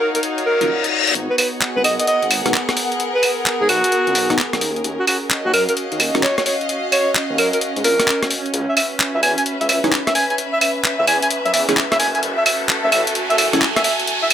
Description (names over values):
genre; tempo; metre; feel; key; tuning
UK garage, two-step garage; 130 BPM; 4/4; swing 65% on 16ths; G# minor; A4 = 440 Hz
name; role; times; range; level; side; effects
breathy alto saxophone; melody; 0.0-14.3 s; F#4 to G#5; -19 LUFS; equal; ping-pong delay
warm chamber string section; texture; 0.0-14.3 s; B3 to G#5; -23 LUFS; equal; none
breakbeat sampler-style drum kit; drums; 0.1-14.3 s; claves, handclaps, hi-hat, rim click; -19 LUFS; equal; none
reverse cymbal and riser; sound effects; 0.5-1.2, 10.5-14.3 s; none; -24 LUFS; left 2 dB; none
punchy chord stab; stabs; 0.6-6.2, 9.8-13.6 s; B3 to B4; -21 LUFS; equal; chorus, ping-pong delay
dark detuned saw bass; bass; 1.2-13.6 s; F#1 to G#2; -26 LUFS; equal; high-pass filter
room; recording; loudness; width
moderate studio reverb, RT60 0.5 s; none; -15 LUFS; side -10 dB against mid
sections
0.0-1.2 A section; 1.2-14.3 B section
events
reverse cymbal 0.5-1.2; build-up 1.2-14.3; filter sweep on synth stab 1.2-14.3; riser 10.5-14.3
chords
0.0 D#m9; 1.2 G#m9; 4.6 D#m9; 8.5 C#m7; 12.0 F#m9